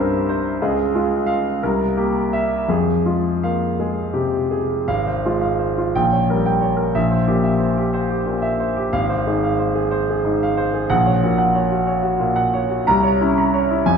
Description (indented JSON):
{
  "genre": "classical, romantic character piece for solo piano",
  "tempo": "53-64 BPM (dotted quarters)",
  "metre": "6/8",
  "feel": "rubato",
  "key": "F minor",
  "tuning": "A4 = 441 Hz",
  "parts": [
    { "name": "clear concert grand piano", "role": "solo", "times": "0.0-14.0 s", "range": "Ab1 to Bb5", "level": "-17 LUFS", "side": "equal", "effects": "none" }
  ],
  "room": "wet recital hall reverb, RT60 1.7 s",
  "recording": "recorded in a church or concert hall",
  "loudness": "-17 LUFS",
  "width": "side -6 dB against mid",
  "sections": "0.0-4.9 A section; 4.9-14.0 B section",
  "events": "none",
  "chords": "0.0 C; 0.6 Db; 1.6 C7; 2.7 Fm; 4.9 Fm/Ab; 5.9 Gdim/Bb; 6.9 C7/Bb; 8.9 Fm/Ab; 10.9 Gb/Bb; 12.9 C7b9"
}